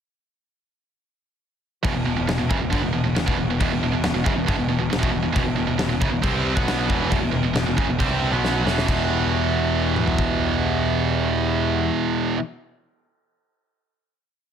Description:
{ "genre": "heavy metal", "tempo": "137 BPM", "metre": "4/4", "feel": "straight", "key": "E minor", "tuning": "A4 = 436 Hz", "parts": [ { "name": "pipe organ, strings celeste", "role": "sustained chords", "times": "1.8-11.9 s", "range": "E3 to B4", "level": "-35 LUFS", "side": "left 1 dB", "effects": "none" }, { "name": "distorted electric guitar", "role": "riff", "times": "1.8-12.4 s", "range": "E2 to C4", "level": "-27 LUFS", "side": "left 11 dB", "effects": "distortion" }, { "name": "tight distorted guitar", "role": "riff", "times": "1.8-12.4 s", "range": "E2 to C4", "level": "-23 LUFS", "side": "right 8 dB", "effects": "distortion" }, { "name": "growling picked electric bass", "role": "bass", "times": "1.8-11.9 s", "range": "E1 to C2", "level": "-26 LUFS", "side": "left 1 dB", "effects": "overdrive" }, { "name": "big rock drum kit", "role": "drums", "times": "1.8-10.3 s", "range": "crash cymbal, kick drum, snare drum, toms", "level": "-25 LUFS", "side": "equal", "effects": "none" } ], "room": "studio reverb", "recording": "dense, heavily limited modern master", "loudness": "-19 LUFS", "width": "side -8 dB against mid", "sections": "1.8-8.9 riff; 8.9-12.4 final chord", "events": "drum fill 8.4-8.9", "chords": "1.8 Em" }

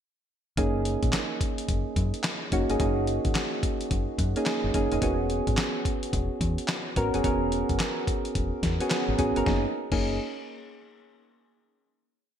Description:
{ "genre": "R&B, new jack swing", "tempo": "108 BPM", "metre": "4/4", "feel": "swing 63% on 16ths", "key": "F# mixolydian", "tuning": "A4 = 441 Hz", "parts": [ { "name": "soft electric-piano-like synth keys", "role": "accompaniment", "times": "0.6-10.2 s", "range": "A#3 to A#4", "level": "-28 LUFS", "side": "right 1 dB", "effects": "chorus" }, { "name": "deep dub fingered electric bass", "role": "bass", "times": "0.6-10.2 s", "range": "E1 to F#2", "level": "-30 LUFS", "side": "left 1 dB", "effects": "none" }, { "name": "dusty soul sampler-style drum kit", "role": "drums", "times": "0.6-10.0 s", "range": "crash cymbal, handclaps, hi-hat, kick drum, snare drum", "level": "-29 LUFS", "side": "left 1 dB", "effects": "gated reverb" } ], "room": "moderate plate reverb, RT60 2.0 s", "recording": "bright 1980s-style digital production", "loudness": "-24 LUFS", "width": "side -9 dB against mid", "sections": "0.6-9.5 verse; 9.5-11.7 final chord", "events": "none", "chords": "0.6 F#6; 5.0 E69; 9.5 F#6" }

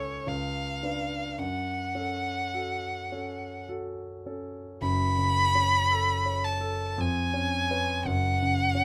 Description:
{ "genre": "classical, romantic duo for violin and grand piano", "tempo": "52-58 BPM", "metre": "3/4", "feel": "rubato", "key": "F# minor", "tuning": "A4 = 440 Hz", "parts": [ { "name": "rich violin", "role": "melody", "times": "0.0-8.8 s", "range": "C#5 to B5", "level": "-30 LUFS", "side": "equal", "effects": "none" }, { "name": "warm concert grand piano", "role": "accompaniment", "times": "0.0-8.8 s", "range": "F#1 to C#5", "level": "-32 LUFS", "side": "equal", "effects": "none" } ], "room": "little or no reverb", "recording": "close, detailed microphones", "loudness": "-28 LUFS", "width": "mono", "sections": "0.0-4.8 A section; 4.8-8.8 B section", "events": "none", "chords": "0.3 C#7b9; 1.4 F#m; 7.0 C#7/E#; 8.1 F#5" }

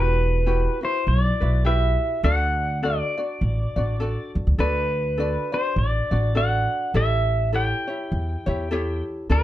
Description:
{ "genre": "Hawaiian", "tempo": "102 BPM", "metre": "4/4", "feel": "swing 60% on 8ths", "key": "unclear", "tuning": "A4 = 440 Hz", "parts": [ { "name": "pedal steel guitar", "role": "melody", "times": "0.0-9.4 s", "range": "B4 to G5", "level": "-25 LUFS", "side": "equal", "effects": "none" }, { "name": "ukulele", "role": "accompaniment", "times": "0.0-9.4 s", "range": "D4 to D5", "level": "-29 LUFS", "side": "left 2 dB", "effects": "none" }, { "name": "upright bass", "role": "bass", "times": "0.0-9.4 s", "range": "E1 to E2", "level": "-22 LUFS", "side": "equal", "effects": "none" } ], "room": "light reverb", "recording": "dark, warm production", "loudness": "-20 LUFS", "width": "side -14 dB against mid", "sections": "0.0-9.4 A section", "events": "none", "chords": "0.0 Emadd9; 2.2 D; 6.9 A7" }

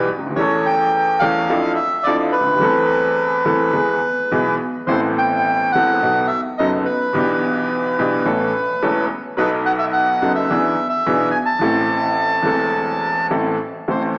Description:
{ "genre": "tango", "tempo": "107 BPM", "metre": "4/4", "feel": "rubato", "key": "A minor", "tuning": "A4 = 444 Hz", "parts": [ { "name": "bandoneon", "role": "melody", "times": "0.0-14.0 s", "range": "B4 to A5", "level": "-18 LUFS", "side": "equal", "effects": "none" }, { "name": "bright upright piano", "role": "accompaniment", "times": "0.0-14.1 s", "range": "E1 to A4", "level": "-18 LUFS", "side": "equal", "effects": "none" } ], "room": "wet recital hall reverb, RT60 1.9 s", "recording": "worn, warbling old tape, cassette tape, warbly pitch drift, small speaker sound", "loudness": "-15 LUFS", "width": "side -30 dB against mid", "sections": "0.0-13.9 A section", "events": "none", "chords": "0.4 A/E; 1.5 Dmadd9/F; 2.6 Am/E; 3.7 E; 4.9 Amadd9; 6.0 B7; 7.2 Em7/B; 8.3 A; 9.4 B7; 10.5 E7; 11.6 Am" }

